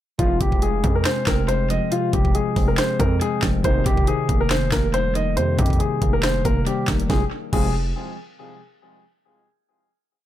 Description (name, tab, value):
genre	hip hop, trap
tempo	139 BPM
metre	4/4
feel	half-time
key	F minor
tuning	A4 = 439 Hz
part	dark grand piano	melody	0.2-7.7 s	F4 to Eb5	-24 LUFS	left 2 dB	low-pass filter, tape echo
part	tine electric piano	accompaniment	0.2-7.7 s	C3 to C4	-25 LUFS	left 1 dB	medium stereo tremolo, low-pass filter, tape echo
part	warm brass ensemble	stabs	0.2-0.6, 3.6-4.1, 7.1-7.7 s	C2 to F3	-31 LUFS	right 5 dB	tape echo
part	distorted 808-style bass	bass	0.2-7.9 s	F1 to F2	-24 LUFS	equal	distortion
part	trap drum kit	drums	0.2-7.6 s	crash cymbal, handclaps, hi-hat, kick drum, snare drum	-23 LUFS	equal	none
room	little or no reverb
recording	echo-heavy mix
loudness	-18 LUFS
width	side -12 dB against mid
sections	0.2-7.1 hook; 7.1-8.8 final chord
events	none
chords	0.2 Fm; 3.6 Cm7/F; 7.1 Fm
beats	| 0.19 0.62 1.05 1.49 | 1.92 2.35 2.78 3.21 | 3.64 4.08 4.51 4.94 | 5.37 5.80 6.23 6.67 | 7.10 7.53